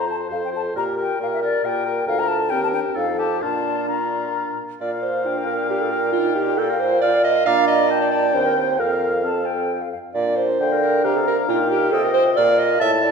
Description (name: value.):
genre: quick classical-period movement for wind quintet.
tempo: 135 BPM.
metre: 3/4.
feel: straight.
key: Bb major.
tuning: A4 = 440 Hz.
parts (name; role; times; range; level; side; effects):
hollow concert flute; melody; 0.0-13.1 s; D5 to Bb5; -26 LUFS; left 6 dB; none.
clear oboe; second line; 0.0-13.1 s; F4 to A5; -26 LUFS; left 3 dB; none.
dark clarinet; accompaniment; 0.0-13.1 s; C4 to F5; -21 LUFS; right 3 dB; none.
mellow French horn; accompaniment; 0.0-13.1 s; C4 to Bb4; -28 LUFS; right 1 dB; none.
clear bassoon; bass; 0.0-13.1 s; D2 to D3; -25 LUFS; right 1 dB; none.
room: wet recital hall reverb, RT60 1.4 s.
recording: recorded in a church or concert hall.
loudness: -18 LUFS.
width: side -5 dB against mid.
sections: 0.0-4.8 A section; 4.8-13.1 B section.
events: none.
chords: 0.0 F; 0.8 Gm/Bb; 2.1 Bb/D; 2.5 Cm7/Eb; 3.0 F7; 3.4 Bb; 6.1 Bb69; 7.5 Bb; 8.3 Cm/Eb; 8.8 F; 10.2 Bb; 11.5 F5/Bb.